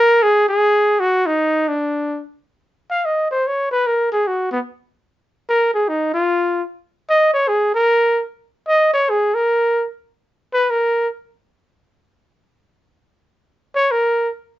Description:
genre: jazz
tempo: 149 BPM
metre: 4/4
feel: swing 66% on 8ths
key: unclear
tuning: A4 = 442 Hz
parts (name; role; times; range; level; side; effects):
- warm trumpet; solo; 0.0-11.1, 13.8-14.3 s; Cb4 to F5; -15 LUFS; equal; none
room: light reverb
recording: nothing above 7.5 kHz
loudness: -16 LUFS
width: side -14 dB against mid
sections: 0.0-2.6 A section; 2.6-14.6 B section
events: trumpet solo 2.6-14.6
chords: none

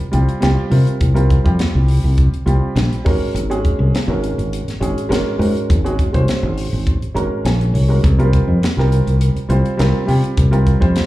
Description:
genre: electric jazz fusion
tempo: 103 BPM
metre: 4/4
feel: straight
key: unclear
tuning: A4 = 444 Hz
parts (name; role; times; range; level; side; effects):
- fingered electric bass; bass; 0.0-11.0 s; Ab1 to C3; -15 LUFS; equal; none
- dark grand piano; accompaniment; 0.1-11.1 s; G3 to Bb5; -21 LUFS; right 1 dB; slapback echo
- crisp fusion drum kit; drums; 0.1-11.1 s; hi-hat, kick drum, snare drum; -20 LUFS; equal; none
room: small room ambience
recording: live gig heard through the venue's PA, club reverb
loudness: -14 LUFS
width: side -16 dB against mid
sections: 0.0-11.1 A section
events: grand piano fill 6.9-8.0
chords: 0.0 C7sus4; 3.1 Ab9sus4; 8.0 C7sus4

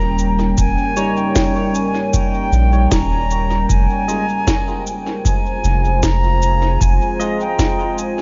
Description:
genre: ambient dub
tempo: 77 BPM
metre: 4/4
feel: straight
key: F minor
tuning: A4 = 442 Hz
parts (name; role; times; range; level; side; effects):
- concert flute; melody; 0.0-8.2 s; G5 to Bb5; -24 LUFS; equal; dub echo
- deep dark ambient pad; sustained chords; 0.0-8.2 s; G3 to C5; -25 LUFS; equal; chorus, built-in reverb
- soft dub sub bass; bass; 0.0-7.0 s; Eb1 to Bb1; -18 LUFS; equal; tube saturation
- electronic cabasa and snare drum; drums; 0.2-8.1 s; none; -27 LUFS; equal; dub echo
- electronic kick drum; drums; 0.6-7.8 s; none; -22 LUFS; equal; none
- barky tine electric piano; stabs; 1.0-8.2 s; G3 to Eb5; -27 LUFS; equal; analog chorus, dub echo
room: light reverb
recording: nothing above 7.5 kHz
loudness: -17 LUFS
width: mono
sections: 0.0-8.2 A section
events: none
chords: 0.0 Eb7; 3.7 Fm7

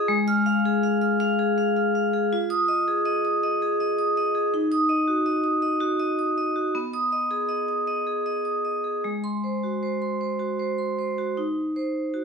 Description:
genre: classical, contemporary piece for solo vibraphone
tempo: 54 BPM (dotted quarters)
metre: 6/8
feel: rubato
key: Eb dorian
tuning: A4 = 440 Hz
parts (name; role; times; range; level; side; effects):
- vibraphone with medium hard mallets; solo; 0.0-12.2 s; Ab3 to F6; -22 LUFS; equal; none
room: moderate stone room reverb, RT60 1.0 s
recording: heard from further back in the room, studio ambience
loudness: -22 LUFS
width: side -5 dB against mid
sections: 0.0-11.4 A section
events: none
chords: 0.1 Fm/Ab; 2.3 Fm7; 4.5 Ebm; 6.7 B6; 9.0 Ab7; 11.4 Ebm6

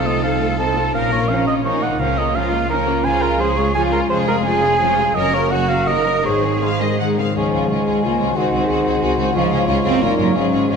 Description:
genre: classical, dramatic, fast romantic movement for symphony orchestra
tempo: 158-184 BPM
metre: 3/4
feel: rubato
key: Bb minor, Db major from 3.0 s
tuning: A4 = 438 Hz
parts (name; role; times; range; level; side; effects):
- warm symphonic violin section; melody; 0.0-10.8 s; F4 to Gb5; -28 LUFS; left 3 dB; none
- dark cor anglais; second line; 0.0-10.8 s; Bb4 to A5; -21 LUFS; right 4 dB; none
- warm symphonic violin section; second line; 0.0-10.8 s; Bb3 to Gb4; -27 LUFS; left 4 dB; none
- warm symphonic viola section; accompaniment; 0.0-10.8 s; Eb3 to Db4; -26 LUFS; right 2 dB; none
- concert harp; arpeggios; 0.0-10.8 s; F2 to Db5; -24 LUFS; left 7 dB; none
- rich symphonic cello section; bass; 0.0-10.8 s; Eb3 to Bb4; -22 LUFS; right 2 dB; none
- warm symphonic double bass section; bass; 0.0-10.8 s; F1 to Db2; -25 LUFS; right 5 dB; none
- mellow hollow concert flute; second line; 7.4-10.8 s; F5 to Ab5; -26 LUFS; left 2 dB; none
- warm bassoon; accompaniment; 7.4-10.8 s; Ab2 to Bb2; -25 LUFS; right 3 dB; none
- mellow French horn section; sustained chords; 7.4-10.8 s; Db4 to Ab4; -23 LUFS; left 4 dB; none
room: moderate scoring stage reverb, RT60 2.0 s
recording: none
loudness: -15 LUFS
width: side -6 dB against mid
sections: 0.0-7.4 A section; 7.4-10.8 B section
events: none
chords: 0.0 F7/C; 0.9 Bbm; 2.0 Bbm/Db; 3.0 Db; 4.1 Db/F; 5.2 Gb; 5.9 Ebm/Gb; 6.3 Ab; 7.4 Db; 8.4 Ab7/Db; 9.4 Db; 10.0 Gbmaj7

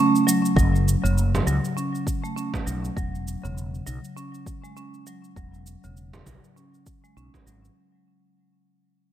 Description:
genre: organic downtempo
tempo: 100 BPM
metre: 4/4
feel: swing 57% on 16ths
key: unclear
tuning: A4 = 441 Hz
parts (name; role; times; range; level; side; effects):
- marimba with medium hard mallets; arpeggios; 0.0-7.8 s; C#3 to C#4; -25 LUFS; right 1 dB; low-pass filter, ping-pong delay
- shaker; drums; 0.2-7.7 s; none; -30 LUFS; right 3 dB; none
- mellow fretless electric bass; bass; 0.6-7.7 s; E1 to C#2; -25 LUFS; equal; analog chorus, sidechain pumping
- electronic kick drum; drums; 0.6-7.4 s; none; -25 LUFS; equal; none
- frame drum; percussion; 1.3-7.4 s; none; -32 LUFS; right 4 dB; none
room: light reverb, studio reverb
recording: none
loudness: -21 LUFS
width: side -11 dB against mid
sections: 0.0-7.8 A section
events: fade-out 0.0-7.8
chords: 0.0 F#5; 3.0 N.C.

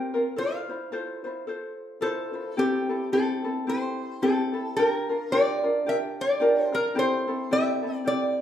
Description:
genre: hawaiian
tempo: 109 BPM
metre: 4/4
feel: swing 58% on 8ths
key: unclear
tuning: A4 = 440 Hz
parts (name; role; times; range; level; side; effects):
- lap resonator guitar; melody; 0.0-8.4 s; G4 to F5; -26 LUFS; equal; none
- ukulele; accompaniment; 0.0-8.4 s; C4 to C5; -27 LUFS; left 1 dB; none
room: wet large studio reverb, RT60 0.9 s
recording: band playing live in one room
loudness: -24 LUFS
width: side -10 dB against mid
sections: 0.0-2.6 A section; 2.6-8.4 A section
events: none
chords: 0.4 Fmaj7; 2.6 C6; 4.8 Gm7; 7.0 Am7

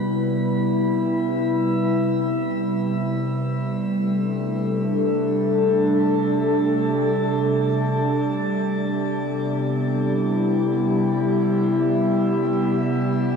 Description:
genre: ambient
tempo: free time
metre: none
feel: none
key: unclear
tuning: A4 = 440 Hz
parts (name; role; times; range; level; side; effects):
- warbly tape-like pad; sustained chords; 0.0-13.4 s; C3 to B4; -19 LUFS; equal; chorus, built-in reverb
- analog drone; drone; 6.2-13.4 s; G3; -34 LUFS; equal; none
room: wet shimmer reverb, RT60 7.5 s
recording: dark, warm production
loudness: -19 LUFS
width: side -6 dB against mid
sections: 0.0-13.4 A section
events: none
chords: 0.0 Cmaj7

